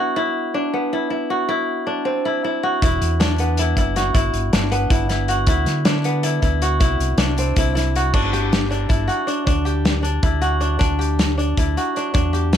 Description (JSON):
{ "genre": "math rock and midwest emo", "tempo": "316 BPM (eighths)", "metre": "7/8", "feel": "straight", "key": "G major", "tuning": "A4 = 439 Hz", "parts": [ { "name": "kora", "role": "arpeggios", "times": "0.0-12.6 s", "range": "B3 to G4", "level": "-20 LUFS", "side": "equal", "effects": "none" }, { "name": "fingered electric bass", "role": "bass", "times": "2.8-12.6 s", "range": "E1 to D3", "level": "-21 LUFS", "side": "equal", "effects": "none" }, { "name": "loose indie drum kit", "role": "drums", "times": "2.8-12.6 s", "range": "crash cymbal, hi-hat, kick drum, snare drum", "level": "-20 LUFS", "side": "equal", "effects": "none" } ], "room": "light reverb", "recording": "dark, warm production", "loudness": "-17 LUFS", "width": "side -9 dB against mid", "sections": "0.0-8.1 A section; 8.1-12.6 B section", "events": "none", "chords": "0.0 Bmadd11; 1.5 C; 2.8 E5; 4.2 Gmaj7; 5.5 Dadd9; 6.8 C; 8.1 G5; 9.5 G5/D" }